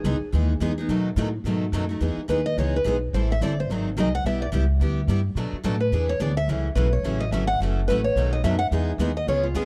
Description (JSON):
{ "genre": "acoustic string swing (jazz manouche)", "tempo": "214 BPM", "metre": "4/4", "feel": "swing 58% on 8ths", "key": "E major", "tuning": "A4 = 437 Hz", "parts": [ { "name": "picked steel-string acoustic guitar", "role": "second line", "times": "0.0-0.3, 2.3-9.7 s", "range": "E#4 to F#5", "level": "-29 LUFS", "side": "equal", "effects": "none" }, { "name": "picked steel-string acoustic guitar", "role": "accompaniment", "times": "0.0-9.7 s", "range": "B2 to A4", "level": "-31 LUFS", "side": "equal", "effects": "none" }, { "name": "picked steel-string acoustic guitar", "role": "accompaniment", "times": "0.0-9.7 s", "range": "B2 to B4", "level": "-34 LUFS", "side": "equal", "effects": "none" }, { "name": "upright bass", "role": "bass", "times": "0.0-9.7 s", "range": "F#1 to B2", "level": "-27 LUFS", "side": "equal", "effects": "none" } ], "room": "little or no reverb", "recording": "dry, close 1970s-style studio recording", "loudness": "-24 LUFS", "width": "mono", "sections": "0.0-2.0 A section; 2.0-9.7 B section", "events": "steel-string acoustic guitar solo 2.0-9.7", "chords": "0.0 Emaj7; 0.9 B7; 2.0 Emaj7; 3.1 Am7; 3.7 G#7; 4.2 G6; 5.4 Bm7; 5.9 E7; 6.5 A6; 7.6 F#m7; 8.2 B7; 8.7 Emaj7" }